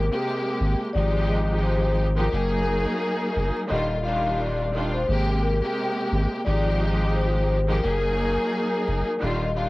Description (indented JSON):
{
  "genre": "hip hop, boom-bap hip-hop",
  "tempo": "87 BPM",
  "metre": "4/4",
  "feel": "swing 56% on 16ths",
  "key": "unclear",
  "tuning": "A4 = 439 Hz",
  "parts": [
    { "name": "vibraphone with soft mallets", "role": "melody", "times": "0.0-9.7 s", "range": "Bb4 to F5", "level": "-28 LUFS", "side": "left 3 dB", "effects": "high-pass filter, low-pass filter" },
    { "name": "warm studio string section", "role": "accompaniment", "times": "0.0-9.7 s", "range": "C3 to Ab4", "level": "-26 LUFS", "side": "equal", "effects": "high-pass filter, low-pass filter, cassette tape" },
    { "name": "soft dub sub bass", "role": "bass", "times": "0.0-9.7 s", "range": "Eb1 to Ab1", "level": "-24 LUFS", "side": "equal", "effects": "none" }
  ],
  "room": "light reverb",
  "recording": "home recording on cassette, vinyl crackle",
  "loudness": "-21 LUFS",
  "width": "side -20 dB against mid",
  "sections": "0.0-9.7 A section",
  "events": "none",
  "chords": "0.0 Abmaj9; 0.9 Fm9/Ab; 2.3 Gb69; 3.7 Ebmaj9; 5.1 Abmaj9; 6.5 Fm9/Ab; 7.8 Gb69",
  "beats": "0.25 | 0.94 1.63 2.32 3.01 | 3.70 4.39 5.08 5.77 | 6.46 7.15 7.84 8.53 | 9.21"
}